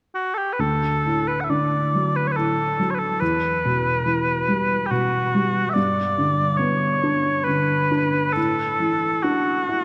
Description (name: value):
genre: celtic folk, Celtic slow air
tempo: 69 BPM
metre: 3/4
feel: uneven beats, rubato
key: D major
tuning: A4 = 440 Hz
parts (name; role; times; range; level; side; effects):
- mellow small bagpipes; melody; 0.1-9.8 s; F#4 to F#5; -24 LUFS; equal; none
- felt-muted upright piano; accompaniment; 0.6-9.8 s; D2 to E4; -25 LUFS; equal; none
room: wet church reverb, RT60 3.8 s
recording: none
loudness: -21 LUFS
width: mono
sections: 0.6-9.8 A section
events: none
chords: 0.0 N.C.; 0.6 D; 3.2 Emadd9; 5.8 G; 8.4 Asus4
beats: | 0.59 1.50 2.37 | 3.21 4.07 4.92 | 5.77 6.61 7.48 | 8.37 9.26